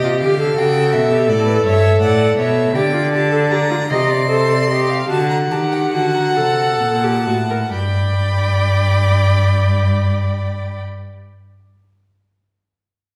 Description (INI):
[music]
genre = classical, baroque-style fugue for string quartet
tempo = 42-56 BPM (dotted quarters)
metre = 12/8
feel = straight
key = unclear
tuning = A4 = 440 Hz
[part]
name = warm violin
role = melody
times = 0.0-10.8 s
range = D5 to C6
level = -27 LUFS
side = equal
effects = none
[part]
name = rich violin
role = second line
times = 0.0-10.8 s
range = F#4 to G5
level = -24 LUFS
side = equal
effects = none
[part]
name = warm viola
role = accompaniment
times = 0.0-10.8 s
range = F4 to D5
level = -21 LUFS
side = equal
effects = none
[part]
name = rich cello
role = bass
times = 0.0-10.8 s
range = G2 to Eb3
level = -20 LUFS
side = equal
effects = none
[sound]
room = wet recital hall reverb, RT60 1.4 s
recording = heard from further back in the room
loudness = -16 LUFS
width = mono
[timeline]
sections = 0.0-7.7 A section; 7.7-13.2 B section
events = slowing down 0.0-7.7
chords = 0.0 G5; 0.6 A7; 2.8 D7sus4; 5.1 D7; 7.7 G